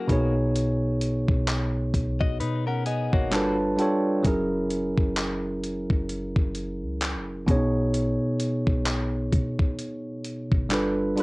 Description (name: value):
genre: contemporary R&B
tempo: 65 BPM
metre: 4/4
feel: swing 58% on 16ths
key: B major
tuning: A4 = 440 Hz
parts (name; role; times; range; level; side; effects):
- bell-like tine electric piano; accompaniment; 0.0-11.2 s; B2 to A5; -25 LUFS; equal; cassette tape
- direct-recorded clean electric guitar; arpeggios; 0.0-3.6 s; A#3 to D#5; -33 LUFS; left 5 dB; cassette tape, analog delay, plate reverb
- clean 808-style bass; bass; 0.1-11.1 s; F#1 to B2; -32 LUFS; equal; none
- dusty soul sampler-style drum kit; drums; 0.1-11.2 s; handclaps, hi-hat, kick drum; -25 LUFS; equal; cassette tape
room: light reverb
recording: home recording on cassette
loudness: -23 LUFS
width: side -24 dB against mid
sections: 0.0-11.2 A section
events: tine electric piano fill 2.9-4.2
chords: 0.1 B69; 3.3 G9; 4.2 F#7; 7.5 B69; 10.7 G9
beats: | 0.55 1.48 2.40 3.32 | 4.25 5.17 6.09 7.02 | 7.94 8.86 9.79 10.71